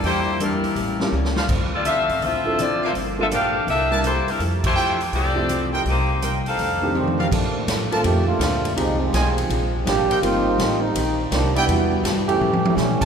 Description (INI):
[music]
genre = jazz, big band swing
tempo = 165 BPM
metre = 4/4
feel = swing 66% on 8ths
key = F major, Bb major from 7.3 s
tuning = A4 = 440 Hz
[part]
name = archtop guitar, miked and amplified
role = accompaniment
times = 0.0-13.0 s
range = F2 to A4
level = -30 LUFS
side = left 3 dB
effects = none
[part]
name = warm concert grand piano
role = accompaniment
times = 0.0-12.4 s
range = Eb3 to Bb4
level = -27 LUFS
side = equal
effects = none
[part]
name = clear trumpet section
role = stabs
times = 0.0-13.1 s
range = D4 to A5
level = -28 LUFS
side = right 1 dB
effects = none
[part]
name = upright bass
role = bass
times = 0.0-13.0 s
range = G1 to Cb3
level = -25 LUFS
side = equal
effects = none
[part]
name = swinging big-band drum kit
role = drums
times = 0.0-13.1 s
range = crash cymbal, hi-hat, kick drum, ride cymbal, snare drum, toms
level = -26 LUFS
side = equal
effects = none
[part]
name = bright saxophone section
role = melody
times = 0.1-6.9 s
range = G3 to F5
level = -23 LUFS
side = left 2 dB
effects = none
[part]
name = warm trombone section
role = second line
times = 7.0-13.1 s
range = Eb3 to G4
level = -22 LUFS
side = right 2 dB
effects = none
[sound]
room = wet church reverb, RT60 3.5 s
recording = recorded in a church or concert hall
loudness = -18 LUFS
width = side -7 dB against mid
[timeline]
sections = 0.0-7.3 A section; 7.3-13.1 B section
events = drum fill 1.1-1.5, 7.0-7.3, 12.4-12.8; band accent 4.6; trombone section solo 7.3-13.1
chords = 0.0 Em7b5; 0.8 A7b9; 1.5 Dm9; 2.9 Gm7; 3.7 C13; 4.4 Fmaj9; 5.9 Cm7; 6.6 F13; 7.3 Bbmaj7; 8.8 Fm7; 9.5 Bb7; 10.2 Eb6; 11.7 Em7; 12.4 A7